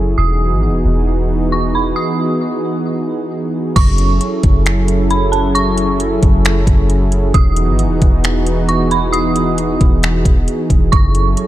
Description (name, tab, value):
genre	hip hop, atmospheric cloud-rap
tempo	134 BPM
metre	4/4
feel	half-time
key	F# dorian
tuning	A4 = 442 Hz
part	warm analog pad	sustained chords	0.0-11.5 s	E3 to A4	-17 LUFS	right 1 dB	chorus, sidechain pumping, low-pass filter
part	soft 808-style bass	bass	0.0-11.4 s	E1 to G#1	-16 LUFS	equal	none
part	dark detuned synth bell	melody	0.2-11.3 s	A5 to D#6	-21 LUFS	right 3 dB	chorus, tremolo, low-pass filter, tape echo
part	trap drum kit	drums	3.8-11.5 s	crash cymbal, finger snaps, hi-hat, kick drum	-14 LUFS	equal	none
room	digital ambience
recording	dark, warm production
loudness	-12 LUFS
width	side -14 dB against mid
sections	0.0-3.8 A section; 3.8-11.5 B section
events	filter sweep 0.0-3.8; break 2.0-3.8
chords	0.2 Emaj7; 3.8 F#m7; 7.3 Emaj7; 10.9 F#m7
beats	| 0.18 0.63 1.07 1.52 | 1.97 2.42 2.87 3.31 | 3.76 4.21 4.66 5.11 | 5.55 6.00 6.45 6.90 | 7.34 7.79 8.24 8.69 | 9.13 9.58 10.03 10.48 | 10.93 11.37